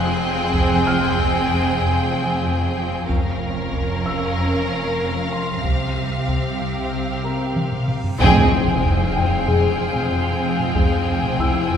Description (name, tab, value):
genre	cinematic, suspense film score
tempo	94 BPM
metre	4/4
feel	straight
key	F harmonic minor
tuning	A4 = 440 Hz
part	rich studio violin section	melody	0.0-11.8 s	F5 to G5	-28 LUFS	left 2 dB	none
part	rich studio violin section	second line	0.0-11.8 s	G4 to Bb4	-25 LUFS	equal	none
part	rich studio viola section	accompaniment	0.0-11.8 s	C4 to Db4	-27 LUFS	right 1 dB	none
part	concert harp	riff	0.0-11.8 s	F2 to C4	-25 LUFS	left 3 dB	none
part	rich studio cello section	bass	0.0-11.8 s	F2 to C3	-28 LUFS	right 2 dB	none
part	rich studio double bass section	bass	0.0-11.8 s	F1 to C2	-27 LUFS	right 4 dB	none
part	felt-muted upright piano	texture	0.0-11.8 s	E4 to F6	-32 LUFS	left 3 dB	none
part	rich studio violin section	texture	0.0-11.8 s	C6 to C7	-34 LUFS	left 2 dB	none
part	solo taiko drums	drums	0.5-11.8 s	none	-25 LUFS	right 1 dB	none
part	reverse cymbal and sub drop	sound effects	8.4-10.8 s	none	-28 LUFS	right 1 dB	none
part	mellow French horn section	sustained chords	8.2-11.0 s	Ab3 to Ab4	-27 LUFS	left 6 dB	none
part	tam-tam	percussion	8.2-10.7 s	none	-30 LUFS	left 4 dB	none
part	timpani	percussion	8.2-9.1 s	F2	-29 LUFS	right 1 dB	none
room	wet concert hall reverb, RT60 1.9 s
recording	recorded in a church or concert hall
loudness	-18 LUFS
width	side -8 dB against mid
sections	0.0-8.2 A section; 8.2-11.8 A section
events	drum fill 7.6-8.2; reverse cymbal 7.9; band accent 8.2-8.8; impact 8.2-10.8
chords	0.0 Fmadd9; 3.1 Bbm/F; 5.6 Csus4; 8.2 Fmadd9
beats	| 0.54 1.18 1.82 2.45 | 3.09 3.73 4.37 5.01 | 5.65 6.28 6.92 7.56 | 8.20 8.84 9.47 10.11 | 10.75 11.39